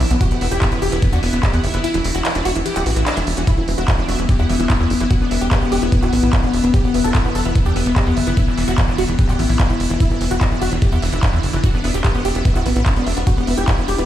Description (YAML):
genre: psychedelic trance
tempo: 147 BPM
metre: 4/4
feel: straight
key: E minor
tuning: A4 = 440 Hz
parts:
  - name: evolving wavetable pad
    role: sustained chords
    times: 0.0-14.1 s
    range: E3 to E4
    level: -24 LUFS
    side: left 3 dB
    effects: chorus, built-in reverb, sidechain pumping
  - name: wide unison pluck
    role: riff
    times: 0.0-14.0 s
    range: D4 to F#5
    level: -27 LUFS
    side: right 1 dB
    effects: auto-pan, cassette tape, sidechain pumping, dub echo
  - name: tight sequencer bass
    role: bass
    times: 0.0-14.0 s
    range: D1 to E2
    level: -20 LUFS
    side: equal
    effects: none
  - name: techno drum kit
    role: drums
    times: 0.0-14.1 s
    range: handclaps, hi-hat, ride cymbal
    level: -26 LUFS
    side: right 1 dB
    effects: none
  - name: supersaw stab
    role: melody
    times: 0.1-14.0 s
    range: E3 to A4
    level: -23 LUFS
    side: equal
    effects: phaser, sidechain pumping, dub echo
  - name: electronic kick drum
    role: drums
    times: 0.2-13.8 s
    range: none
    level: -16 LUFS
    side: equal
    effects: none
room: little or no reverb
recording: played on a big sound system in a bare room, stone room reverb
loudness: -15 LUFS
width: side -12 dB against mid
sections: 0.0-3.5 A section; 3.5-14.1 A section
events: drop 0.0-3.5, 3.5-14.1; kick drops out 1.8-3.5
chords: 0.0 E5